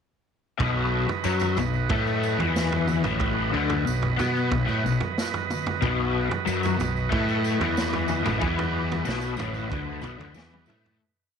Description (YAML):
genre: psychedelic rock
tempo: 92 BPM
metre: 4/4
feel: straight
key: B mixolydian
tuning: A4 = 441 Hz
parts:
  - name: combo organ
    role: sustained chords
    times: 0.6-11.0 s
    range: F#3 to D#5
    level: -30 LUFS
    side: right 14 dB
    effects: none
  - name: cranked stack guitar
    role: riff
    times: 0.6-11.0 s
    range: A2 to B3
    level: -27 LUFS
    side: left 9 dB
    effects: overdrive, rotary speaker
  - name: fuzz picked electric bass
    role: bass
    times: 0.6-11.0 s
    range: A1 to B2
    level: -28 LUFS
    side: right 2 dB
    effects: overdrive
  - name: vintage drum kit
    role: drums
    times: 0.6-11.0 s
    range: kick drum, snare drum, toms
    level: -31 LUFS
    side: right 2 dB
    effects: none
  - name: tambourine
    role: percussion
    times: 1.2-10.8 s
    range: none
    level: -44 LUFS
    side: left 14 dB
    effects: none
room: light reverb, small room ambience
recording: 1960s-style stereo with parts hard left and right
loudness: -23 LUFS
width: side -7 dB against mid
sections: 0.6-11.0 riff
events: fade-out 8.4-11.0; drum fill 10.4-11.0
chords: 0.6 B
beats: | 0.59 1.25 1.91 2.56 | 3.21 3.87 4.52 5.17 | 5.82 6.47 7.12 7.77 | 8.42 9.07 9.71 10.36